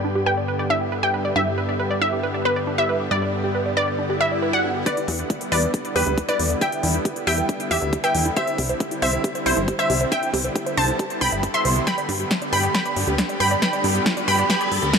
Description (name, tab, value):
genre	uplifting trance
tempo	137 BPM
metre	4/4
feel	straight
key	E minor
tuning	A4 = 440 Hz
part	supersaw pad	sustained chords	0.0-15.0 s	D3 to G4	-28 LUFS	equal	sidechain pumping, low-pass filter
part	analog pluck	arpeggios	0.0-15.0 s	D4 to E5	-29 LUFS	right 2 dB	chorus, sidechain pumping, tape echo
part	plucky analog bass	bass	0.0-15.0 s	G1 to G2	-26 LUFS	left 1 dB	sidechain pumping
part	wide unison pluck	melody	0.3-14.7 s	E4 to C6	-23 LUFS	equal	sidechain pumping, tape echo
part	swell and riser	sound effects	4.1-4.9, 12.9-15.0 s	none	-31 LUFS	left 2 dB	none
part	bright grand piano	second line	4.9-14.7 s	B4 to C6	-28 LUFS	right 1 dB	sidechain pumping, tape echo
part	big-room dance drum kit	drums	4.9-15.0 s	hi-hat, snare drum	-25 LUFS	left 1 dB	overdrive, studio ambience
part	electronic kick drum	drums	4.9-15.0 s	none	-27 LUFS	left 1 dB	high-pass filter on kick, studio ambience
room	moderate huge ambient reverb, RT60 7.6 s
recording	none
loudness	-19 LUFS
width	side -6 dB against mid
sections	0.0-4.9 A section; 4.9-15.0 B section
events	filter sweep on supersaw synth 0.0-4.9; swell 4.1-4.9; build-up 4.9-15.0; filter sweep on synth arpeggio sound 4.9-15.0; drum fill 11.9-15.0; riser 12.9-15.0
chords	0.0 G; 4.9 Em7; 8.4 Cadd9; 11.9 G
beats	0.04 0.48 0.92 | 1.36 1.80 2.23 2.67 | 3.11 3.55 3.99 4.42 | 4.86 5.30 5.74 6.18 | 6.61 7.05 7.49 7.93 | 8.37 8.80 9.24 9.68 | 10.12 10.56 10.99 11.43 | 11.87 12.31 12.75 13.18 | 13.62 14.06 14.50 14.94